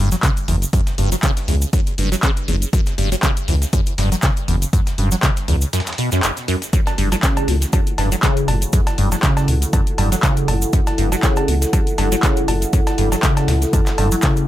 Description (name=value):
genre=acid house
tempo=120 BPM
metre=4/4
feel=swing 55% on 16ths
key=F# phrygian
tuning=A4 = 440 Hz
part: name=liquid acid bass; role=riff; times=0.0-14.5 s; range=F#1 to F#3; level=-21 LUFS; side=equal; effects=phaser, analog chorus, sidechain pumping, digital delay
part: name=round analog bass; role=bass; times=0.0-14.2 s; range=F#1 to C#2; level=-19 LUFS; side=equal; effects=sidechain pumping
part: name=dusty soul sampler-style drum kit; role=drums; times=0.1-14.4 s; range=hi-hat, snare drum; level=-33 LUFS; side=equal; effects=high-pass filter on snare, sidechain pumping on hats, high-pass filter on hats, high-pass filter on room
part: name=punchy analog drum machine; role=drums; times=0.1-14.5 s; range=cowbell, handclaps, hi-hat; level=-24 LUFS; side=equal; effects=overdrive
part: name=cabasa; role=percussion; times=0.1-14.5 s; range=none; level=-29 LUFS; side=right 2 dB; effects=none
part: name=electronic kick drum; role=drums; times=0.2-14.3 s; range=none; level=-18 LUFS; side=equal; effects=overdrive
part: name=dark analog pad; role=sustained chords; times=6.7-14.5 s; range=E4 to F#5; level=-25 LUFS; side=left 1 dB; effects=chorus, sidechain pumping
room=light reverb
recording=none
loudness=-15 LUFS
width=side -14 dB against mid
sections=0.0-14.5 A section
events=break 5.7-6.7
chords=0.0 F#m7